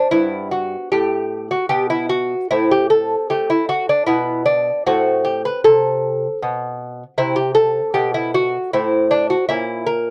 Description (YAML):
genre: classical, baroque-style dance for lute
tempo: 77 BPM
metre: 3/4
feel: rubato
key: unclear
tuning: A4 = 440 Hz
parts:
  - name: lute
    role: solo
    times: 0.0-10.1 s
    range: G2 to B4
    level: -18 LUFS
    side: equal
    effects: none
room: little or no reverb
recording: dry, close 1970s-style studio recording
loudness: -18 LUFS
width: mono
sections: 0.0-10.1 A section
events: none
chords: 0.1 G; 2.5 Am; 4.1 N.C.; 4.8 Am; 7.2 Am13; 8.7 Amadd11; 9.5 A#dim